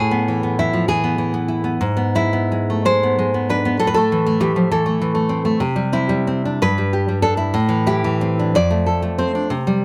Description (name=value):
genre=romantic piece for solo classical guitar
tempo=54-70 BPM (dotted quarters)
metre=6/8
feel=rubato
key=A minor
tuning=A4 = 440 Hz
part: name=nylon-string guitar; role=solo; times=0.0-9.8 s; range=F2 to D5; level=-18 LUFS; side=equal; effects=none
room=light reverb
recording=none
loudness=-19 LUFS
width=mono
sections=0.0-9.8 A section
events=none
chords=0.0 E/A; 1.8 E7/G#; 3.8 Am; 5.6 C; 6.6 G; 7.5 Am; 8.6 F